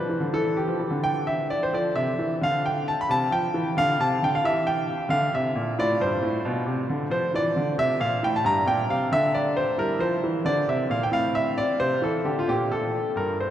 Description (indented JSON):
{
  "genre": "classical, baroque-style suite movement for grand piano",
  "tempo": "89 BPM (dotted quarters)",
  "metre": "12/8",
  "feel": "rubato",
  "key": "unclear",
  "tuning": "A4 = 437 Hz",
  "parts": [
    { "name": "bright concert grand piano", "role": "solo", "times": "0.0-13.5 s", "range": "G2 to B5", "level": "-22 LUFS", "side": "equal", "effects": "none" }
  ],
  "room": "wet cathedral reverb, RT60 6.5 s",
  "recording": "in a vast, echoing space",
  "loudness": "-22 LUFS",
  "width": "side -11 dB against mid",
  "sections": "0.0-13.5 A section",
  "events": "none",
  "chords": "0.3 Dsus4; 1.7 F; 4.4 Edim; 5.8 F; 8.5 Gm; 9.8 Edim; 11.1 Amadd11; 12.5 Gm/Bb"
}